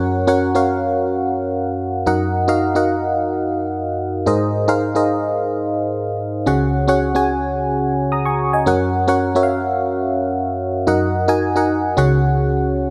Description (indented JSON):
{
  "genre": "pop",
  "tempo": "109 BPM",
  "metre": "4/4",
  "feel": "straight",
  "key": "unclear",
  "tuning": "A4 = 440 Hz",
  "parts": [
    { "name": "FM electric piano", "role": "solo", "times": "0.0-12.9 s", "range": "Db2 to Eb6", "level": "-18 LUFS", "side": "equal", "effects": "chorus" }
  ],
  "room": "moderate lush hall reverb, RT60 3.0 s",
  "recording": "none",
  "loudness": "-18 LUFS",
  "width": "mono",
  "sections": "0.0-12.9 A section",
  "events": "none",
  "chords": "0.0 Gb; 2.1 Ebm/Gb; 4.3 Abadd9; 6.5 Dbsus4; 8.7 Gb; 10.9 Ebm/Gb; 12.0 Dbsus4",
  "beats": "0.41 0.96 1.51 | 2.06 2.62 3.17 3.72 | 4.27 4.82 5.37 5.92 | 6.47 7.02 7.57 8.12 | 8.67 9.22 9.77 10.32 | 10.87 11.42 11.97 12.52"
}